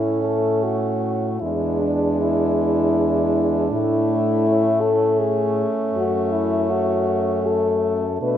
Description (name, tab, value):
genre	classical, lyrical piece for horn quartet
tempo	79 BPM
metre	3/4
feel	uneven beats, rubato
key	A major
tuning	A4 = 440 Hz
part	warm French horn	melody	0.0-8.4 s	D4 to B4	-22 LUFS	left 4 dB	none
part	clear French horn	second line	0.0-8.4 s	C#4 to D4	-26 LUFS	right 10 dB	none
part	warm French horn	accompaniment	0.0-8.4 s	G#3 to A3	-24 LUFS	left 1 dB	none
part	mellow French horn	bass	0.0-8.4 s	E2 to B2	-25 LUFS	right 2 dB	none
room	moderate concert hall reverb, RT60 1.8 s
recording	none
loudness	-18 LUFS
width	side -10 dB against mid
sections	0.0-8.4 A section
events	none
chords	0.0 A; 1.4 E7; 3.7 A; 5.9 F#m